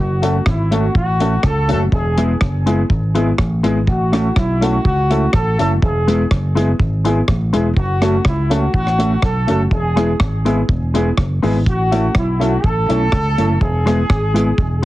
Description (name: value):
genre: ska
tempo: 123 BPM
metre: 4/4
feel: swing 53% on 8ths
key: unclear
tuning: A4 = 445 Hz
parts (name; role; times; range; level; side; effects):
- warm horn section; melody; 0.0-14.8 s; E4 to A4; -22 LUFS; equal; analog delay
- fingered electric bass; bass; 0.0-14.8 s; E1 to C#2; -17 LUFS; equal; none
- mellow electric guitar; accompaniment; 0.2-14.6 s; G#3 to F#4; -21 LUFS; right 2 dB; none
- warm upright piano; stabs; 0.2-14.8 s; G#3 to A4; -20 LUFS; left 3 dB; none
- deep reggae drum kit; drums; 0.2-14.7 s; hi-hat, kick drum, rim click; -19 LUFS; equal; vintage 12-bit sampler grit
room: light reverb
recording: heavily compressed radio sound, multiband compression, cassette tape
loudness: -14 LUFS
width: side -16 dB against mid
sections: 0.0-14.8 A section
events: none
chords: 0.0 F#m; 1.9 E; 3.9 A; 5.8 E; 7.8 F#m; 9.7 E; 11.7 A; 13.6 E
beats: 0.46 0.95 1.44 | 1.93 2.41 2.90 3.39 | 3.87 4.36 4.85 5.33 | 5.82 6.31 6.79 7.28 | 7.77 8.26 8.74 9.23 | 9.71 10.20 10.69 11.17 | 11.66 12.14 12.63 13.12 | 13.60 14.09 14.57